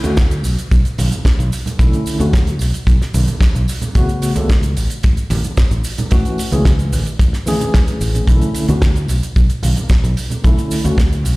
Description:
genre	nu-disco, nu disco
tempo	111 BPM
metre	4/4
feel	straight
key	B dorian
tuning	A4 = 440 Hz
part	tine electric piano	accompaniment	0.0-11.0 s	C#3 to A4	-20 LUFS	equal	medium tremolo, sidechain pumping, digital delay
part	fingered electric bass	bass	0.0-11.4 s	A1 to D2	-17 LUFS	equal	none
part	damped 70s drum kit	drums	0.0-11.4 s	hi-hat, shaker, snare drum	-26 LUFS	right 1 dB	studio reverb
part	tambourine and congas	percussion	0.0-11.4 s	none	-26 LUFS	right 2 dB	none
part	kick drum	drums	0.2-11.1 s	none	-13 LUFS	equal	studio reverb
room	small room ambience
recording	played on a big sound system in a bare room, large studio reverb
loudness	-13 LUFS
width	side -22 dB against mid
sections	0.0-11.4 A section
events	none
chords	0.0 Bm9; 3.7 A69; 6.1 F#m7/A; 8.3 Bm11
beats	0.17 0.71 1.25 | 1.79 2.34 2.88 3.42 | 3.96 4.50 5.04 5.58 | 6.12 6.66 7.20 7.74 | 8.28 8.82 9.36 9.90 | 10.44 10.98

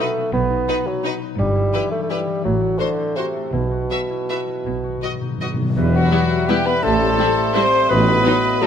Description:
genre	classical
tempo	151-184 BPM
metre	3/4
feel	rubato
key	E minor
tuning	A4 = 444 Hz
part	clear studio violin section	melody	0.0-8.7 s	D#4 to E5	-29 LUFS	left 4 dB	none
part	warm studio violin section	second line	0.0-8.7 s	F#4 to C5	-25 LUFS	left 2 dB	none
part	mellow bassoon	accompaniment	0.0-8.7 s	B2 to B3	-24 LUFS	right 2 dB	none
part	rich studio viola section	accompaniment	0.0-8.7 s	F#3 to F#4	-26 LUFS	right 1 dB	none
part	concert harp	arpeggios	0.0-8.7 s	G2 to G5	-26 LUFS	left 12 dB	none
part	rich chamber cello section	bass	0.3-8.2 s	E2 to B2	-25 LUFS	right 3 dB	none
part	rich studio double bass section	bass	0.3-8.2 s	E1 to B1	-25 LUFS	right 3 dB	none
part	timpani	percussion	3.5-5.8 s	B2	-25 LUFS	equal	none
part	warm oboe	second line	5.8-8.7 s	B4 to D#5	-26 LUFS	right 2 dB	none
part	warm tuba	bass	5.8-8.2 s	E1 to A1	-26 LUFS	right 3 dB	none
part	clear clarinet	second line	5.9-8.7 s	F#4 to C5	-25 LUFS	left 2 dB	none
part	concert flute	second line	5.9-8.7 s	F#5 to C6	-21 LUFS	right 1 dB	none
part	mellow French horn section	sustained chords	5.9-8.7 s	F#3 to C4	-26 LUFS	left 5 dB	none
room	moderate scoring stage reverb, RT60 1.9 s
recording	none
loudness	-17 LUFS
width	side -8 dB against mid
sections	0.0-5.8 A section; 5.8-8.7 B section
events	timpani fill 4.7-5.8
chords	0.0 B; 1.4 Em/G; 2.4 F#dim/A; 3.5 Bsus4; 4.7 B; 5.8 Em; 6.8 Am7; 7.9 B7/A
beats	| 0.33 0.68 1.04 | 1.39 1.73 2.10 | 2.44 2.79 3.16 | 3.53 3.90 4.29 | 4.66 5.02 5.41 | 5.77 6.12 6.49 | 6.83 7.18 7.55 | 7.90 8.25 8.62

